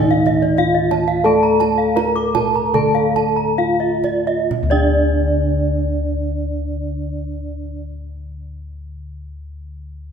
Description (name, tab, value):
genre	Balinese gamelan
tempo	62-99 BPM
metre	4/4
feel	straight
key	D pelog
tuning	A4 = 440 Hz
part	gamelan-type bronze metallophone	melody	0.0-7.8 s	D4 to Bb4	-21 LUFS	right 2 dB	none
part	gamelan-type bronze metallophone	accompaniment	0.0-7.8 s	D3 to A3	-24 LUFS	right 2 dB	none
part	gamelan-type bronze metallophone	arpeggios	0.0-7.8 s	D5 to D6	-22 LUFS	left 3 dB	none
part	gamelan-type bossed gongs	bass	0.0-7.7 s	D2 to A4	-22 LUFS	left 2 dB	none
part	kendang	percussion	0.1-5.0 s	none	-26 LUFS	right 7 dB	none
part	gamelan-type bronze metallophone	arpeggios	0.3-7.8 s	D5 to Bb5	-23 LUFS	right 5 dB	none
room	moderate concert hall reverb, RT60 2.1 s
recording	minimal, uncompressed stereo recording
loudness	-15 LUFS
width	side -7 dB against mid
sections	0.0-4.5 A section; 4.5-10.1 B section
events	slowing down 0.0-4.5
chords	none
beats	0.58 | 1.25 1.97 2.74 3.59 | 4.51 5.49 6.46 7.44